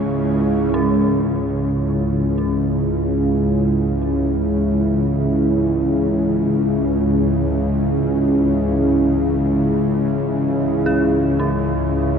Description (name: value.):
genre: dark ambient drone.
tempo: free time.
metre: none.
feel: none.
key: unclear.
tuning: A4 = 440 Hz.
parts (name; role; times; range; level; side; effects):
deep dark ambient pad; sustained chords; 0.0-12.2 s; G#3 to C#5; -20 LUFS; right 1 dB; chorus, built-in reverb.
dark detuned synth bell; arpeggios; 0.0-12.2 s; C#4 to G#4; -28 LUFS; right 1 dB; chorus, tape echo.
bowed-like drone; drone; 0.0-12.2 s; C#2 to C#3; -18 LUFS; left 1 dB; built-in reverb.
flickering grainy texture; texture; 0.0-0.8 s; C#5; -42 LUFS; right 1 dB; none.
room: wet huge ambient reverb, RT60 8.0 s.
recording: dark, warm production.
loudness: -16 LUFS.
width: side -6 dB against mid.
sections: 0.7-12.2 A section.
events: filter sweep on synth drone 0.7-12.2.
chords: 0.0 C#m.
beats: free time.